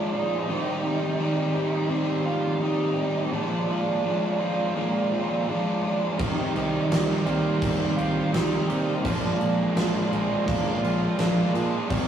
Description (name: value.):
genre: rock, shoegaze and dream pop.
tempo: 84 BPM.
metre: 4/4.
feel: straight.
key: unclear.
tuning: A4 = 440 Hz.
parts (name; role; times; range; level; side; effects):
octave-fuzz lead guitar; melody; 0.0-12.1 s; Bb3 to F4; -34 LUFS; right 4 dB; distortion.
dark analog pad; sustained chords; 0.0-12.1 s; G4 to Bb5; -36 LUFS; right 6 dB; none.
crunchy overdriven guitar; riff; 0.0-12.1 s; Bb2 to G4; -25 LUFS; equal; none.
twangy electric guitar; arpeggios; 6.2-12.1 s; Eb3 to G4; -36 LUFS; right 4 dB; none.
distorted electric guitar; riff; 6.2-12.1 s; Bb2 to C4; -36 LUFS; right 2 dB; none.
overdriven semi-hollow guitar; riff; 6.2-12.1 s; Bb2 to Ab4; -31 LUFS; right 3 dB; none.
overdriven picked electric bass; bass; 6.2-12.1 s; Bb1 to C3; -31 LUFS; equal; none.
gated 80s drum kit; drums; 6.2-12.1 s; crash cymbal, kick drum, snare drum; -29 LUFS; right 1 dB; none.
room: wet stone room reverb, RT60 1.3 s.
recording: rough rehearsal-room recording, tube saturation, studio ambience.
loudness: -22 LUFS.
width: side -9 dB against mid.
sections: 0.0-12.1 A section.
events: none.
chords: 0.5 Cm7; 3.3 Bb7; 6.2 Cm7; 9.0 Bb7.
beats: | 0.47 1.19 1.90 2.62 | 3.33 4.04 4.76 5.47 | 6.19 6.90 7.62 8.33 | 9.05 9.76 10.47 11.19 | 11.90.